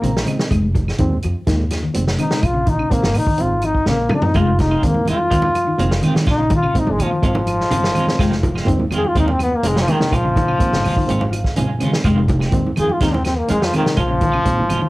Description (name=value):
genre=afrobeat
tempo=125 BPM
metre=4/4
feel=straight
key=F minor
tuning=A4 = 440 Hz
part: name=bright trombone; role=melody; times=0.0-14.9 s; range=Eb3 to Ab4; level=-19 LUFS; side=left 1 dB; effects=cassette tape, plate reverb
part: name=bright reed electric piano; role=accompaniment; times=0.0-14.6 s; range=Bb2 to Bb5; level=-24 LUFS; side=right 2 dB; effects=fast tremolo, cassette tape
part: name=mellow electric guitar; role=arpeggios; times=0.0-14.9 s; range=C3 to Ab3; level=-24 LUFS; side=left 2 dB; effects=ensemble chorus, cassette tape
part: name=upright bass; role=bass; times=0.0-14.8 s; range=F1 to Bb2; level=-21 LUFS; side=equal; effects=none
part: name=vintage drum kit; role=drums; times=0.0-14.8 s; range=hi-hat, kick drum, snare drum, toms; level=-21 LUFS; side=equal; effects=cassette tape
part: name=claves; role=percussion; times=0.3-14.8 s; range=none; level=-34 LUFS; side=right 4 dB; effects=none
part: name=semi-hollow electric guitar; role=stabs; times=4.3-14.8 s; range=Eb3 to F4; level=-28 LUFS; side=right 3 dB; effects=tremolo, cassette tape, plate reverb
part: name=congas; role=percussion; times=4.4-14.9 s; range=none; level=-26 LUFS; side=right 2 dB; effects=none
room=light reverb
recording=home recording on cassette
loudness=-15 LUFS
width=side -19 dB against mid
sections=0.0-14.9 A section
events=reed electric piano fill 0.0-0.5, 11.1-12.1; trombone solo 0.0-14.9; drum fill 3.9-4.4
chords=0.0 Bbm7; 0.5 Fm7; 2.4 Bbm7; 4.4 Fm7; 6.3 Bbm7; 8.2 Fm7; 10.1 Bbm7; 12.1 Fm7; 14.0 Bbm7